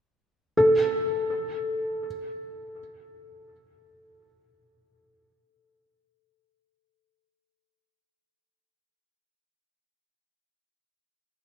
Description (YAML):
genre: ambient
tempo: free time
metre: none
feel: none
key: unclear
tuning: A4 = 440 Hz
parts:
  - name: felt-muted upright piano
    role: solo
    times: 0.6-11.4 s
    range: A4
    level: -23 LUFS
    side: equal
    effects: tape echo
room: wet concert hall reverb, RT60 2.3 s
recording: none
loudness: -23 LUFS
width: side -8 dB against mid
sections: 0.6-11.4 A section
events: none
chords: none